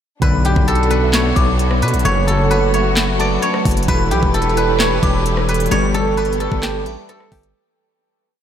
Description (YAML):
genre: hip hop, trap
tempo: 131 BPM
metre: 4/4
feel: half-time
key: B minor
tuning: A4 = 442 Hz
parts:
  - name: guzheng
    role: melody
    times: 0.2-8.4 s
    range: G4 to D5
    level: -19 LUFS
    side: right 2 dB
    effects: diffuse ambient delay
  - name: delicate synth tine bell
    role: second line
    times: 0.2-7.1 s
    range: A5 to D6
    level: -26 LUFS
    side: left 2 dB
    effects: chorus, phaser, tremolo, diffuse ambient delay
  - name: mellow tine electric piano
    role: accompaniment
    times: 0.2-7.6 s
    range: B2 to E5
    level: -22 LUFS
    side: equal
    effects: medium stereo tremolo
  - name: warm symphonic string section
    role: sustained chords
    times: 0.2-7.5 s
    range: E3 to B4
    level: -25 LUFS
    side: left 2 dB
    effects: none
  - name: chorused polysynth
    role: stabs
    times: 0.2-6.2 s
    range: A1 to G3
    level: -27 LUFS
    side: left 3 dB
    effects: none
  - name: distorted 808-style bass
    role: bass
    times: 0.2-7.5 s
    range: E1 to B2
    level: -19 LUFS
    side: equal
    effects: distortion
  - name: trap drum kit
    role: drums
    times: 0.2-7.5 s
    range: handclaps, hi-hat, kick drum, rim click, snare drum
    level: -21 LUFS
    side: equal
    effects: overdrive
room: moderate huge ambient reverb, RT60 7.5 s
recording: dreamy mix soaked in reverb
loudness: -14 LUFS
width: side -9 dB against mid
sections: 0.2-7.5 hook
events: fade-out 5.7-7.5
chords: 0.2 Bm; 2.1 F#m; 3.9 Em; 5.7 G